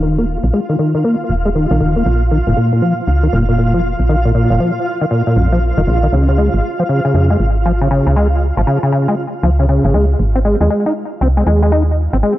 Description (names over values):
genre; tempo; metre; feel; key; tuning
IDM; 118 BPM; 4/4; swing 62% on 16ths; unclear; A4 = 440 Hz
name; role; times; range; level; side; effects
deep acid bass; arpeggios; 0.0-12.3 s; Bb1 to Eb4; -15 LUFS; left 1 dB; analog chorus, tape echo
woody FM bass; bass; 0.0-12.2 s; Eb1 to F2; -14 LUFS; equal; none
flickering grainy texture; texture; 0.0-12.2 s; F4 to F5; -22 LUFS; right 2 dB; built-in reverb
room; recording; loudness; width
little or no reverb; dry, gritty hardware recording; -12 LUFS; side -15 dB against mid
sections
0.0-12.4 A section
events
none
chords
0.0 Eb5; 2.1 Bb5; 6.1 Db; 10.2 Ab